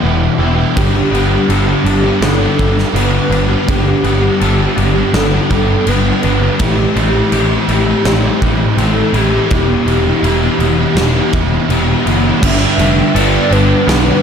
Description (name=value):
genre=rock, shoegaze and dream pop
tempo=82 BPM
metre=4/4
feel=straight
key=unclear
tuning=A4 = 440 Hz
part: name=pure sine lead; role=melody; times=0.0-14.2 s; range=G4 to E5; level=-20 LUFS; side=equal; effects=chorus, tremolo, tape echo
part: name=twangy electric guitar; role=arpeggios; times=0.0-14.2 s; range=G3 to A4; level=-25 LUFS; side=left 11 dB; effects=lush chorus, tape echo
part: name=overdriven electric guitar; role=riff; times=0.0-14.2 s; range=E2 to G4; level=-18 LUFS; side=right 14 dB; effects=reverse reverb
part: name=thick fuzz guitar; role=riff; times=0.0-14.2 s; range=E2 to A3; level=-17 LUFS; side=left 8 dB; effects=distortion, ensemble chorus
part: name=fuzz picked electric bass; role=bass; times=0.0-14.1 s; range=E1 to B1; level=-16 LUFS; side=right 1 dB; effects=overdrive
part: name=big rock drum kit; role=drums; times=0.8-14.1 s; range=crash cymbal, kick drum, snare drum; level=-18 LUFS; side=equal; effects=none
room=small room ambience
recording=none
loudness=-10 LUFS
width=side -7 dB against mid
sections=0.0-12.4 A section; 12.4-14.2 B section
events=none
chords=0.0 Em; 0.8 Gadd9; 6.6 Am7; 9.5 Em; 12.4 Gadd9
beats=0.03 | 0.76 1.49 2.22 2.95 | 3.68 4.41 5.14 5.87 | 6.60 7.33 8.06 8.79 | 9.52 10.24 10.97 11.70 | 12.43 13.15 13.88